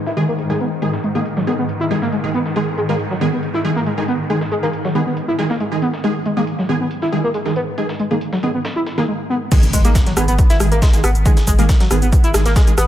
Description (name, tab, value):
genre	driving peak-time techno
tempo	138 BPM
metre	4/4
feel	straight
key	G# minor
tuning	A4 = 441 Hz
part	swarming drone	drone	0.0-9.1 s	G#2 to D#3	-25 LUFS	left 1 dB	built-in reverb, sidechain pumping
part	overdriven synth lead	riff	0.1-12.8 s	F#3 to E4	-21 LUFS	equal	chorus, tube saturation, sidechain pumping, dub echo
part	breakbeat sampler-style drum kit	drums	0.1-12.9 s	hi-hat, snare drum	-32 LUFS	equal	sidechain pumping on hats, high-pass filter on hats, low-pass filter on hats, high-pass filter on snare, low-pass filter on snare
part	rave stab	stabs	0.2-12.7 s	D#3 to G#4	-22 LUFS	right 1 dB	chorus, built-in reverb, sidechain pumping, digital delay
part	electronic kick drum	drums	9.5-12.7 s	none	-14 LUFS	equal	none
part	techno drum kit	drums	9.5-12.9 s	crash cymbal, hi-hat, rim click, shaker	-23 LUFS	equal	none
part	impact	sound effects	9.5-11.3 s	none	-24 LUFS	equal	none
part	saturated sub bass	bass	9.6-12.9 s	G#1	-18 LUFS	equal	sidechain pumping, low-pass filter
room	moderate lush hall reverb, RT60 1.9 s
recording	none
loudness	-15 LUFS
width	side -12 dB against mid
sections	0.0-9.5 A section; 9.5-12.9 B section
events	drop 9.5-12.9; impact 9.5-11.3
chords	0.0 G#5